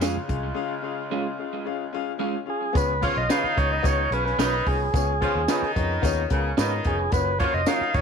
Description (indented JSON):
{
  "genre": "uptempo 1960s-style soul",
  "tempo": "110 BPM",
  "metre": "4/4",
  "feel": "straight",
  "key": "unclear",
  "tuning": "A4 = 441 Hz",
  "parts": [
    { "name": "warm horn section", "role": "second line", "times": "0.0-8.0 s", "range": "C#3 to E#4", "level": "-29 LUFS", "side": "equal", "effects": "none" },
    { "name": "warm concert grand piano", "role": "accompaniment", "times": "0.0-8.0 s", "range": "C#3 to E#5", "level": "-30 LUFS", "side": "left 14 dB", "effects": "none" },
    { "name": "electric guitar through a small old amp", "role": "stabs", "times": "0.0-7.8 s", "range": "G#3 to B4", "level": "-33 LUFS", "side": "right 14 dB", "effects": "tape echo" },
    { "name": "vintage muted picked electric bass", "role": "bass", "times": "0.0-8.0 s", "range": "E#1 to G#2", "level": "-28 LUFS", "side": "right 1 dB", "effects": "none" },
    { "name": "compact cocktail drum kit", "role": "drums", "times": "0.0-8.0 s", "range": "hi-hat, kick drum, snare drum", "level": "-26 LUFS", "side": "equal", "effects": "none" },
    { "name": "tambourine", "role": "percussion", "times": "0.0-7.8 s", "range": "none", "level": "-38 LUFS", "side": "right 16 dB", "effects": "none" },
    { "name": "tonewheel organ", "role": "melody", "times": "2.5-8.0 s", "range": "G#4 to E#5", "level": "-25 LUFS", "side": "right 2 dB", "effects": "overdrive, stopped rotary speaker" }
  ],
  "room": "small room ambience",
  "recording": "1960s-style stereo with parts hard left and right",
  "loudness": "-22 LUFS",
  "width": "side -6 dB against mid",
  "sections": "0.0-2.8 A section; 2.8-8.0 B section",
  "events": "break 0.6-2.8",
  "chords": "0.0 C#; 2.8 C#7; 7.1 F#maj7",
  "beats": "0.01 | 0.56 1.11 1.66 2.20 | 2.75 3.30 3.85 4.39 | 4.94 5.49 6.03 6.58 | 7.13 7.67"
}